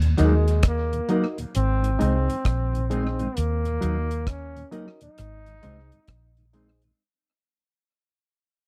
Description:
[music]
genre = roots reggae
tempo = 66 BPM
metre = 4/4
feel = swing 64% on 16ths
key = unclear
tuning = A4 = 440 Hz
[part]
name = mellow tonewheel organ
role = accompaniment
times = 0.0-6.9 s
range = Eb2 to Eb4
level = -35 LUFS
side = equal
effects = none
[part]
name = vintage muted fingered electric bass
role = bass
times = 0.0-6.9 s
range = Ab1 to Eb2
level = -25 LUFS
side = equal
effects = none
[part]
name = deep reggae drum kit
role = drums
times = 0.0-7.0 s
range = hi-hat, kick drum, rim click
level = -28 LUFS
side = equal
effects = tape echo
[part]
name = clear trombone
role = melody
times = 0.2-6.3 s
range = Ab3 to Eb4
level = -32 LUFS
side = equal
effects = tape echo
[part]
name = mellow electric guitar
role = accompaniment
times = 0.2-6.9 s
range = Gb3 to Eb4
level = -30 LUFS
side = equal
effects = tape echo
[part]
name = barky reed electric piano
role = stabs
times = 0.2-6.8 s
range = Eb4 to Eb5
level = -34 LUFS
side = equal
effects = overdrive
[sound]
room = little or no reverb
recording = dry, close 1970s-style studio recording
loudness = -24 LUFS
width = mono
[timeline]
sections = 0.0-7.0 A section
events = fade-out 0.0-7.0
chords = 0.0 Ebm; 1.5 Ab; 3.4 Ebm; 5.2 Ab

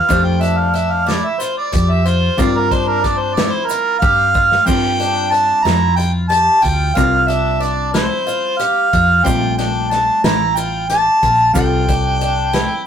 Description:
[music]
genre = progressive instrumental, band music in an uneven meter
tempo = 183 BPM (eighths)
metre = 7/8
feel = straight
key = unclear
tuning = A4 = 440 Hz
[part]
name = warm harmonica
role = melody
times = 0.0-12.9 s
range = Bb4 to Bb5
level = -15 LUFS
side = right 2 dB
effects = none
[part]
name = hollow-body jazz guitar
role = accompaniment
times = 0.0-12.9 s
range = G3 to C5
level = -23 LUFS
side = left 3 dB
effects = none
[part]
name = picked twelve-string acoustic guitar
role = arpeggios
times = 0.0-12.8 s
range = D4 to G4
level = -24 LUFS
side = left 4 dB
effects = none
[part]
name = hollow-body short-scale fingered electric bass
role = bass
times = 0.1-12.7 s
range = A1 to G2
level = -19 LUFS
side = left 1 dB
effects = none
[part]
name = unplugged drum kit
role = drums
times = 0.1-12.7 s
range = crash cymbal, hi-hat, kick drum, snare drum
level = -20 LUFS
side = equal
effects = none
[part]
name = egg shaker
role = percussion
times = 0.1-12.4 s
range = none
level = -33 LUFS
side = right 4 dB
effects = none
[sound]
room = moderate studio reverb, RT60 0.6 s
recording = rough rehearsal-room recording, tube saturation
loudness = -13 LUFS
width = side -8 dB against mid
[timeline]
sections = 0.0-4.7 A section; 4.7-12.9 B section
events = harmonica solo 0.0-4.7; drum fill 4.0-4.7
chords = 0.1 Fmaj7; 2.4 Gm7; 7.0 C7sus4; 9.3 Bbmaj7; 11.6 Csus4

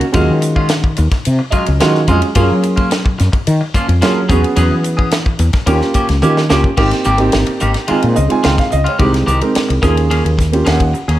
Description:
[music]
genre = electric jazz fusion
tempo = 108 BPM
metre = 4/4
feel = straight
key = unclear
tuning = A4 = 440 Hz
[part]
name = dark grand piano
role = accompaniment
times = 0.0-11.2 s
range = Ab3 to Ab5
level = -17 LUFS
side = right 2 dB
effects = none
[part]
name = clean electric guitar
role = stabs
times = 0.0-11.2 s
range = Eb3 to G#4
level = -19 LUFS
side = equal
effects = lush chorus
[part]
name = tight funk drum kit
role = drums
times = 0.0-11.2 s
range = crash cymbal, hi-hat, kick drum, ride cymbal, snare drum, toms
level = -18 LUFS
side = equal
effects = none
[part]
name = woody fretless electric bass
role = bass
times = 0.1-11.2 s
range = Ab1 to Gb3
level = -14 LUFS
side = equal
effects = wide subtle chorus
[sound]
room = light reverb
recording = none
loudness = -11 LUFS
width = side -14 dB against mid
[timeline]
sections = 0.0-6.8 A section; 6.8-11.2 B section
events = grand piano fill 1.3-2.4; drum fill 6.2-6.8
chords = 0.2 Ebm11; 2.4 Gbmaj7; 4.3 E69; 5.7 Eb9; 6.8 Abmaj9; 7.9 Dbmaj9; 9.0 Abmaj9/C; 9.8 Eb9sus4

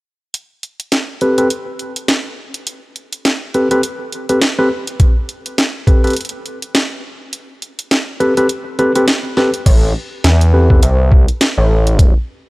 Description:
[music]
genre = glitch hop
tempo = 103 BPM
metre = 4/4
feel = swing 58% on 16ths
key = A minor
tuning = A4 = 440 Hz
[part]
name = drum and bass drum kit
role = drums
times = 0.3-12.1 s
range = crash cymbal, hi-hat, snare drum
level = -17 LUFS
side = equal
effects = overdrive, studio reverb
[part]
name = tine electric piano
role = stabs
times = 1.2-10.8 s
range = C4 to B4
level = -16 LUFS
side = equal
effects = overdrive, sidechain pumping, low-pass filter, analog delay
[part]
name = electronic kick drum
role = drums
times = 5.0-6.0, 9.7-12.1 s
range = none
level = -10 LUFS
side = equal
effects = studio reverb
[part]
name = gritty driven synth bass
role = bass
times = 9.7-12.1 s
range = A1 to E2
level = -11 LUFS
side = equal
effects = distortion, tube saturation
[sound]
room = little or no reverb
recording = dry, gritty hardware recording, cassette tape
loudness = -12 LUFS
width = side -22 dB against mid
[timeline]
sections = 0.3-9.7 A section; 9.7-12.5 B section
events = filter sweep on tine electric piano 0.3-9.7, 9.7-12.5; kick drops out 7.3-9.7; drum fill 9.4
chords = 0.3 Am9; 9.7 Am

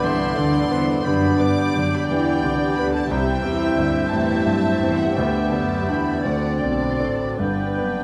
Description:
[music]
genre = classical, romantic movement for piano and orchestra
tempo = 52-62 BPM (dotted quarters)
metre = 12/8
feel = rubato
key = G major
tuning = A4 = 440 Hz
[part]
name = clear grand piano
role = melody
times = 0.0-8.0 s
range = C2 to A4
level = -25 LUFS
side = equal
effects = none
[part]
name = warm symphonic violin section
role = melody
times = 0.0-8.0 s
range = F#5 to D6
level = -34 LUFS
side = equal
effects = none
[part]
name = mellow small flute group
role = second line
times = 0.0-8.0 s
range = G6 to A6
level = -33 LUFS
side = equal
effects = none
[part]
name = warm chamber violin section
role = second line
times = 0.0-8.0 s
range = B4 to E5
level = -32 LUFS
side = equal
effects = none
[part]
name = warm oboe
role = second line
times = 0.0-8.0 s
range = D5 to E5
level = -36 LUFS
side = equal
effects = none
[part]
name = dark symphonic viola section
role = accompaniment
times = 0.0-8.0 s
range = B3 to B4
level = -31 LUFS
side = equal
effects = none
[part]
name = warm bassoon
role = accompaniment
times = 0.0-8.0 s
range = B3 to C4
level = -31 LUFS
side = equal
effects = none
[part]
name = warm French horn section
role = sustained chords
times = 0.0-8.0 s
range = B3 to E4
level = -31 LUFS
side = equal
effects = none
[part]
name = dark symphonic double bass section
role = bass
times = 0.0-8.0 s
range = F#1 to G2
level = -31 LUFS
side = equal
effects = none
[part]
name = warm symphonic cello section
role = bass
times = 0.0-8.0 s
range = F#2 to G3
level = -32 LUFS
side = equal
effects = none
[part]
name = timpani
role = percussion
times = 7.4-8.0 s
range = G2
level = -36 LUFS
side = equal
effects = none
[sound]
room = moderate scoring stage reverb, RT60 2.0 s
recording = none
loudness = -21 LUFS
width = mono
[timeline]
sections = 0.0-8.0 A section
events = none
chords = 0.0 G; 3.1 C; 5.2 G/D; 6.3 D7; 7.4 G

